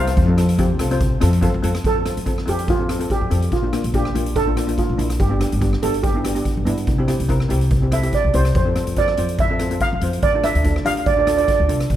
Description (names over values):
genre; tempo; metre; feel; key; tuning
calypso; 143 BPM; 4/4; swing 54% on 16ths; F major; A4 = 440 Hz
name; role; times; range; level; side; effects
steel pan; melody; 0.0-11.6 s; F4 to F5; -22 LUFS; right 3 dB; slapback echo
steel pan; accompaniment; 0.0-11.9 s; Bb3 to F5; -24 LUFS; left 1 dB; none
upright bass; bass; 0.0-12.0 s; G1 to G2; -20 LUFS; equal; none
street-band drum kit; drums; 0.1-12.0 s; hi-hat, kick drum, rim click; -23 LUFS; equal; none
room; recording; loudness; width
light reverb; close, detailed microphones; -16 LUFS; side -12 dB against mid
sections
0.0-1.8 A section; 1.8-12.0 B section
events
steel pan fill 1.0-1.8; steel pan solo 1.8-12.0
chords
0.2 F; 1.8 Fadd9; 3.5 Bbmaj7; 5.2 G; 6.9 C; 8.6 Fmaj7; 10.2 Dm